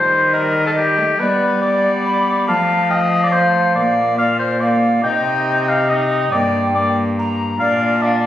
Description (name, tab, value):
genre	classical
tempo	141 BPM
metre	3/4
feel	straight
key	unclear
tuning	A4 = 440 Hz
part	clear oboe	melody	0.0-8.3 s	G4 to G5	-17 LUFS	left 2 dB	none
part	rich viola	accompaniment	0.0-8.3 s	G3 to Eb4	-23 LUFS	left 1 dB	none
part	rich cello	bass	0.0-8.3 s	G2 to G3	-20 LUFS	equal	none
part	mellow hollow alto recorder	second line	0.3-8.3 s	D5 to B5	-20 LUFS	right 1 dB	none
room	wet recital hall reverb, RT60 1.4 s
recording	recorded on a phone in the room, studio reverb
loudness	-14 LUFS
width	side -12 dB against mid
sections	0.0-8.3 A section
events	none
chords	0.0 Eb; 1.2 G; 2.5 F; 3.8 Bb; 5.0 Cm; 6.3 Gm; 7.6 Bb